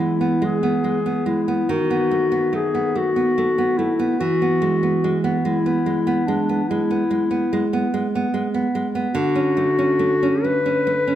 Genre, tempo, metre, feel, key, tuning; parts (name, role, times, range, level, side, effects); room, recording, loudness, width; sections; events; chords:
romantic duo for clarinet and classical guitar; 48 BPM (dotted quarters); 12/8; rubato; A4 = 440 Hz
warm clarinet; melody; 0.0-11.2 s; D4 to B4; -21 LUFS; left 3 dB; tape echo
nylon-string guitar; accompaniment; 0.0-11.2 s; D3 to C#4; -20 LUFS; right 3 dB
wet recital hall reverb, RT60 1.5 s; -18 LUFS; side -11 dB against mid
0.0-11.2 A section
0.0 E; 1.7 B7/D#; 4.2 E; 9.1 Dmaj7